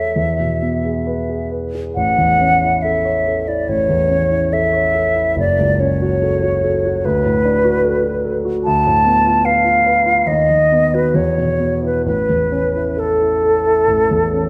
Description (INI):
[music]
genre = classical, romantic duo for flute and grand piano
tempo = 71 BPM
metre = 4/4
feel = uneven beats, rubato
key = A major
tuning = A4 = 439 Hz
[part]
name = concert flute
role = melody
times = 0.0-14.5 s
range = A4 to A5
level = -18 LUFS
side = equal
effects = none
[part]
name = warm grand piano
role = accompaniment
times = 0.0-14.5 s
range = F#1 to C#5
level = -21 LUFS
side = equal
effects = none
[sound]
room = wet recital hall reverb, RT60 1.5 s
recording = none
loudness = -16 LUFS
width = mono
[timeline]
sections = 0.0-14.5 A section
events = none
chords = 0.1 E; 2.0 A; 5.4 F#m; 7.0 Bm7/D; 8.6 Bm7b5/D; 10.3 B/D#; 11.1 E5; 12.0 A